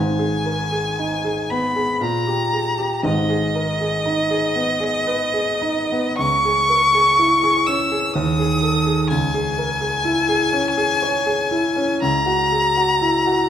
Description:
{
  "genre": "classical, romantic duo for violin and grand piano",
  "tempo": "52-64 BPM",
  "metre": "3/4",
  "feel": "rubato",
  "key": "unclear",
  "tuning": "A4 = 442 Hz",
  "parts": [
    { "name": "clear violin", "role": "melody", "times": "0.0-13.5 s", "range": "D#5 to E6", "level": "-19 LUFS", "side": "left 1 dB", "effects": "none" },
    { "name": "warm grand piano", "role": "accompaniment", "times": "0.0-13.5 s", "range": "G#1 to C#5", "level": "-20 LUFS", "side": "equal", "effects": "none" }
  ],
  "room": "wet recital hall reverb, RT60 1.5 s",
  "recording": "minimal, uncompressed stereo recording",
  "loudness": "-17 LUFS",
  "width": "side -9 dB against mid",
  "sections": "0.0-13.5 A section",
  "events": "none",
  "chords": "0.0 G#m; 2.0 Gm/Bb; 3.0 G#m; 6.2 C#m; 8.1 G#5/D#; 9.1 C#m; 12.0 F#7/C#",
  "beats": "0.99 2.01 | 3.04 4.05 5.07 | 6.18 7.19 8.14 | 9.10 10.05 11.03 | 12.03 13.02"
}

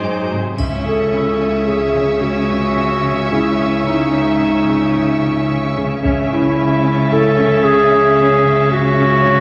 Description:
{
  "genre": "cinematic, suspense film score",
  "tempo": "110 BPM",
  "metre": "5/4",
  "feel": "straight",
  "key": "C# minor",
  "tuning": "A4 = 441 Hz",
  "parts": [
    { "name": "clear studio violin section", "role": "melody", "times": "0.0-9.4 s", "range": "D#5 to C#6", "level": "-39 LUFS", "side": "equal", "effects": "none" },
    { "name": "rich studio violin section", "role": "second line", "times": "0.0-9.4 s", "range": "G#4 to E5", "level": "-27 LUFS", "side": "equal", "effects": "none" },
    { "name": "rich chamber viola section", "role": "accompaniment", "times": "0.0-9.4 s", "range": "F#3 to D#4", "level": "-27 LUFS", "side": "equal", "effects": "none" },
    { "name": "clear studio cello section", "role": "riff", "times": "0.0-9.4 s", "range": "G#2 to C#4", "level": "-27 LUFS", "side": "equal", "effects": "none" },
    { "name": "rich studio cello section", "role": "bass", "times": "0.0-9.4 s", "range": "G#2 to C#3", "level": "-24 LUFS", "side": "equal", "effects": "none" },
    { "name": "clear studio violin section", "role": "texture", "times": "0.0-9.4 s", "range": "C#5 to A6", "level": "-30 LUFS", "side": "equal", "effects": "none" },
    { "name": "concert harp", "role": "texture", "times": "0.0-9.4 s", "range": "C#4 to E6", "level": "-27 LUFS", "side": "equal", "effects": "none" },
    { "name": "rich studio double bass section", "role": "bass", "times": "0.6-9.4 s", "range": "C#2", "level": "-23 LUFS", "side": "equal", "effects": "none" },
    { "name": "solo taiko drums", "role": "drums", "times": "0.6-1.6, 6.1-7.1 s", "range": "none", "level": "-27 LUFS", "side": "equal", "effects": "none" },
    { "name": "triangle", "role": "percussion", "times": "0.6-1.6 s", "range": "none", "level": "-42 LUFS", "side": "equal", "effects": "none" },
    { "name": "warm clarinet", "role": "second line", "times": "0.9-9.4 s", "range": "D#4 to A4", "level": "-18 LUFS", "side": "equal", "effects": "none" }
  ],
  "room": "wet scoring stage reverb, RT60 1.7 s",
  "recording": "none",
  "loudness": "-15 LUFS",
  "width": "mono",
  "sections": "0.6-9.4 A section",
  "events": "none",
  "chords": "0.0 G#7; 0.6 C#madd9",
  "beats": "0.03 | 0.59 1.14 1.68 2.23 2.78 | 3.32 3.87 4.42 4.96 5.50 | 6.04 6.58 7.12 7.65 8.19 | 8.72 9.25"
}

